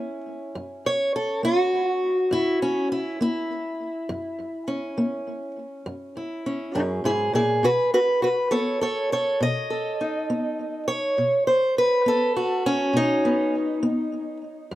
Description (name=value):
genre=acoustic country blues, solo or duo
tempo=68 BPM (dotted quarters)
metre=12/8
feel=straight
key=unclear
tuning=A4 = 440 Hz
part: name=fingerpicked steel-string acoustic guitar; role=solo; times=0.0-14.8 s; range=F#2 to D#5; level=-22 LUFS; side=equal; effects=tape echo
room=light reverb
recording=dark, warm production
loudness=-21 LUFS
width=side -15 dB against mid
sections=0.0-14.8 A section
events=none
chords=0.0 F#7; 7.6 B7